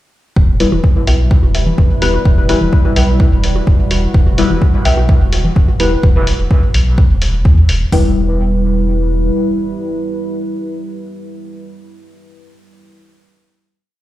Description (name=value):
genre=dub techno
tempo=127 BPM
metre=4/4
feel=straight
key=E minor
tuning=A4 = 437 Hz
part: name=deep dark ambient pad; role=sustained chords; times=0.9-11.1 s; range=G3 to B4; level=-21 LUFS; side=right 1 dB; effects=chorus, built-in reverb, sidechain pumping
part: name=pure sine sub bass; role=bass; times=0.4-9.3 s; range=E1 to E2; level=-14 LUFS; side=equal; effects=sidechain pumping
part: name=deep house drum kit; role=drums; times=0.4-8.0 s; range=hi-hat, kick drum, toms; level=-10 LUFS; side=equal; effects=none
part: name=bongos and congas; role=percussion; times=0.4-5.8 s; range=none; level=-24 LUFS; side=equal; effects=sidechain pumping on perc, dub echo
part: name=deep mellow chord stab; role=stabs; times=0.6-11.1 s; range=G3 to B4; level=-19 LUFS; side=left 3 dB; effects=chorus, phaser, sidechain pumping, dub echo
part: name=electronic hi-hat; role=drums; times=0.6-7.8 s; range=none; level=-23 LUFS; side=left 1 dB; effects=none
part: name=warbly dusty pluck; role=riff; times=1.1-5.0, 7.9-11.1 s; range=B4 to G5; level=-25 LUFS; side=left 1 dB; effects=chorus, sidechain pumping, dub echo
room=light reverb, digital ambience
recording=played on a big sound system in a bare room, large studio reverb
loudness=-11 LUFS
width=side -15 dB against mid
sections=0.4-7.9 groove; 7.9-11.7 final chord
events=none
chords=0.4 Em